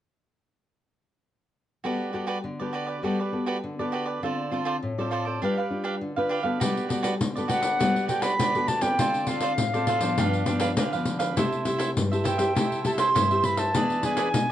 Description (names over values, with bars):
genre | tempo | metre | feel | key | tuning
samba and choro | 101 BPM | 4/4 | straight | G major | A4 = 441 Hz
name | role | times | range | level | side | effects
cavaquinho | accompaniment | 1.8-14.5 s | D4 to F5 | -30 LUFS | right 4 dB | none
nylon-string guitar | accompaniment | 1.8-14.5 s | G2 to B4 | -28 LUFS | left 1 dB | none
pandeiro | percussion | 6.6-14.5 s | none | -28 LUFS | left 2 dB | none
reedy silver concert flute | melody | 7.5-14.5 s | F5 to C6 | -25 LUFS | right 1 dB | none
room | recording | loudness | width
moderate studio reverb, RT60 0.5 s | dark, warm production, nothing above 11.0 kHz | -23 LUFS | side -11 dB against mid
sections
1.8-6.6 A section; 6.6-14.5 B section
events
none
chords
1.8 Gmaj9; 4.2 Dm7; 5.4 G7; 6.6 Gmaj9; 9.0 Dm7; 10.2 G7; 11.4 C6; 13.8 E7